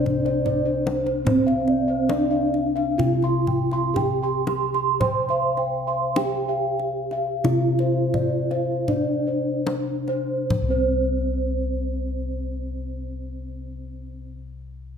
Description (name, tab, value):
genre	Javanese gamelan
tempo	35-74 BPM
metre	4/4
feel	straight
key	unclear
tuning	A4 = 438 Hz
part	gamelan-type bronze metallophone	melody	0.0-14.3 s	C4 to C5	-26 LUFS	right 1 dB	none
part	gamelan-type bossed gongs	arpeggios	0.0-14.4 s	C5 to C6	-28 LUFS	left 3 dB	none
part	gamelan-type bronze metallophone	arpeggios	0.0-14.4 s	C5 to C6	-29 LUFS	right 7 dB	none
part	gamelan-type bossed gongs	bass	0.0-14.3 s	C2 to C5	-26 LUFS	left 2 dB	none
part	kendang	percussion	0.1-11.3 s	none	-29 LUFS	left 2 dB	none
room	moderate recital hall reverb, RT60 1.4 s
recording	none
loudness	-21 LUFS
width	side -7 dB against mid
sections	0.0-10.5 A section; 10.5-15.0 B section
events	slowing down 1.3-10.5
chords	none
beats	0.46 | 1.26 2.10 3.00 3.97 | 5.02 6.18 7.45 8.88 | 10.50 12.23 13.96